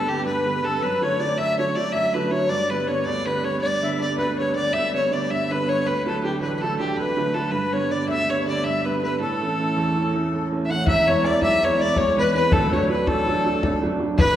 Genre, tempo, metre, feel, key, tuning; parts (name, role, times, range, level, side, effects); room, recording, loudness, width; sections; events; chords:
celtic folk, Celtic slip jig; 107 BPM (dotted quarters); 9/8; straight; E mixolydian from 10.9 s; A4 = 439 Hz
rich fiddle; melody; 0.0-14.4 s; G4 to F#5; -23 LUFS; left 1 dB
musette accordion; second line; 0.0-14.4 s; G4 to F#5; -28 LUFS; left 3 dB
clear upright piano; accompaniment; 0.0-14.4 s; D1 to D4; -24 LUFS; right 3 dB
Celtic harp; second line; 10.7-14.4 s; A4 to F#5; -29 LUFS; right 1 dB
bodhran; percussion; 10.9-14.3 s; -24 LUFS; left 1 dB
wet recital hall reverb, RT60 1.5 s; recorded in a church or concert hall; -20 LUFS; side -11 dB against mid
0.0-10.9 A section; 10.9-14.4 B section
0.0 G; 0.8 D/F#; 2.5 G; 5.9 D; 7.5 G; 9.2 A; 10.9 E; 12.5 D